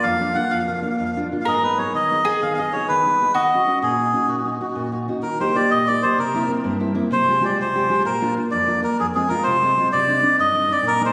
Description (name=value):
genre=italian folk, Italian serenade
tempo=128 BPM (dotted quarters)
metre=6/8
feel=rubato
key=Eb minor, Eb major from 5.2 s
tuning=A4 = 442 Hz
part: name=melodica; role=melody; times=0.0-11.1 s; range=Gb4 to Gb5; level=-22 LUFS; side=equal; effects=tape echo
part: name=mandolin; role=second line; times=0.0-5.0 s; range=F4 to Bb4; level=-27 LUFS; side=equal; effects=none
part: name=nylon-string guitar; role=accompaniment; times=0.0-11.1 s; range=F2 to Ab4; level=-26 LUFS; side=equal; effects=none
room=wet recital hall reverb, RT60 1.6 s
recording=recorded on a phone in the room, studio reverb, compression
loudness=-20 LUFS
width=mono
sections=0.0-5.2 A section; 5.2-11.1 B section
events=none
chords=0.0 Bb; 1.5 Abm; 3.4 Ebm7; 5.2 Eb; 6.2 C7; 7.1 Fmadd9/C; 8.0 Bb; 9.0 Fm; 9.9 Cmadd9